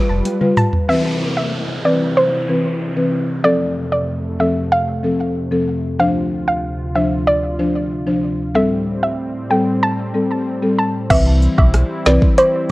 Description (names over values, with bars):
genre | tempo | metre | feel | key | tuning
dancehall | 94 BPM | 4/4 | straight | C major | A4 = 440 Hz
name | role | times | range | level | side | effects
soft round pluck | melody | 0.0-12.7 s | C5 to A5 | -18 LUFS | right 1 dB | chorus, digital delay
buzzing marimba with soft mallets | accompaniment | 0.0-12.2 s | E3 to C5 | -19 LUFS | left 1 dB | sidechain pumping
warm analog pad | sustained chords | 0.0-12.7 s | D2 to B4 | -24 LUFS | equal | chorus, sidechain pumping
sub bass with octave | bass | 0.1-0.2, 11.1-12.2 s | F1 to C2 | -15 LUFS | equal | none
afro-pop drum kit | drums | 0.3-0.9, 11.1-12.5 s | crash cymbal, hi-hat, kick drum, rim click, snare drum, toms | -17 LUFS | equal | none
cabasa and woodblock | percussion | 0.6-0.7, 11.1-12.5 s | none | -30 LUFS | right 5 dB | none
downlifter | sound effects | 0.9-6.0 s | none | -29 LUFS | equal | none
room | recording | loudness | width
light reverb | worn, warbling old tape, cassette tape, warbly pitch drift | -15 LUFS | side -19 dB against mid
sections
0.9-11.1 A section; 11.1-12.7 B section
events
drum fill 0.3-0.9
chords
0.0 G7; 0.9 Cmaj7; 3.4 F; 6.0 Dm7; 8.6 Am7; 11.1 Cmaj7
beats
0.25 | 0.89 1.53 2.17 2.81 | 3.44 4.08 4.72 5.36 | 6.00 6.63 7.27 7.91 | 8.55 9.19 9.83 10.46 | 11.10 11.74 12.38